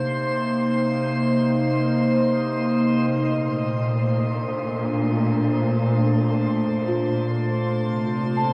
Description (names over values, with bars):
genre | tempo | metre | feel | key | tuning
ambient | 76 BPM | 3/4 | straight | Bb major | A4 = 441 Hz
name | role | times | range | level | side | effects
warbly tape-like pad | sustained chords | 0.0-8.5 s | Bb2 to C5 | -24 LUFS | equal | chorus, built-in reverb
drifting glass-harmonics texture | texture | 0.0-8.5 s | C5 to C6 | -32 LUFS | equal | chorus, built-in reverb
muted studio cello section | bass | 3.1-8.5 s | Bb2 to C3 | -30 LUFS | equal | none
large celesta | arpeggios | 6.9-8.5 s | F4 to A5 | -30 LUFS | equal | diffuse ambient delay
room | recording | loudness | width
wet shimmer reverb, RT60 8.5 s | dark, warm production | -22 LUFS | mono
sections
0.0-3.1 A section; 3.1-8.5 B section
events
fade-in on synth texture 3.1-8.5; filter sweep on ambient pad 3.1-8.5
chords
0.0 Cm7; 3.1 Bbmaj9; 7.9 C7(no3)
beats
| 0.69 1.48 2.29 | 3.10 3.90 4.70 | 5.49 6.28 7.06 | 7.85